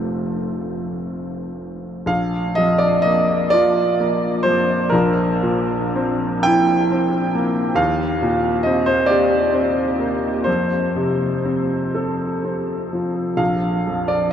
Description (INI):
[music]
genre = classical, romantic nocturne for solo piano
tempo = 38-46 BPM (dotted quarters)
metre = 6/8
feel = rubato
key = Bb major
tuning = A4 = 444 Hz
[part]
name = clear baby grand piano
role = solo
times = 0.0-14.3 s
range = F1 to G5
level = -17 LUFS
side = equal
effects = none
[sound]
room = wet huge ambient reverb, RT60 8.0 s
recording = in a vast, echoing space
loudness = -17 LUFS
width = side -9 dB against mid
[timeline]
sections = 0.0-2.1 A section; 2.1-14.3 B section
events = none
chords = 0.0 F; 2.1 Bb; 4.9 C7/Bb; 7.8 Cm7/Eb; 10.5 F; 13.4 Bb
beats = 0.58 | 2.09 3.53 | 4.93 6.45 | 7.79 9.09 | 10.46 11.95 | 13.40